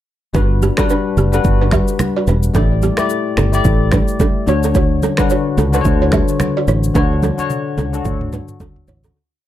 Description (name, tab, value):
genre	afrobeats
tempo	109 BPM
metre	4/4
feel	swing 58% on 16ths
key	D major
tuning	A4 = 436 Hz
part	bell-like tine electric piano	accompaniment	0.3-9.2 s	D3 to D5	-18 LUFS	left 5 dB	lush chorus, plate reverb
part	fingered electric bass	bass	0.3-9.1 s	E1 to D2	-16 LUFS	equal	none
part	afro-pop drum kit	drums	0.3-9.1 s	finger snaps, kick drum, rim click, shaker, toms	-18 LUFS	equal	none
part	congas	percussion	0.3-8.8 s	none	-24 LUFS	right 4 dB	none
part	balafon	riff	0.4-9.1 s	B3 to E5	-22 LUFS	right 6 dB	tape echo
room	light reverb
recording	dark, warm production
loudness	-13 LUFS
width	side -12 dB against mid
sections	0.3-9.2 verse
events	fade-out 7.0-9.2; drum fill 7.0-9.2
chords	0.3 Gmaj7; 2.5 A7sus4; 4.5 Dmaj7